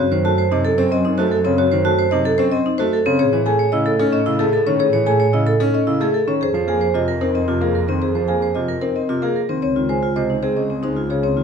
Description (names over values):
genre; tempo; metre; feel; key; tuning
classical, minimalist pattern music; 112 BPM; 3/4; straight; Db major; A4 = 442 Hz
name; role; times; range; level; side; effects
marimba with medium mallets; melody; 0.0-11.4 s; A4 to A5; -22 LUFS; left 9 dB; none
warm concert grand piano; accompaniment; 0.0-11.4 s; C3 to C#4; -24 LUFS; right 1 dB; none
vibraphone with medium hard mallets; arpeggios; 0.0-11.4 s; C4 to C#5; -19 LUFS; right 3 dB; none
warm symphonic double bass section; bass; 0.0-11.4 s; Db2 to A2; -23 LUFS; right 1 dB; none
room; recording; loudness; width
light reverb; close, detailed microphones; -16 LUFS; side -6 dB against mid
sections
0.0-9.6 A section; 9.6-11.4 A section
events
none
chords
0.0 Gbm6; 3.2 Amaj7; 6.4 Fm7; 9.6 Dbmaj7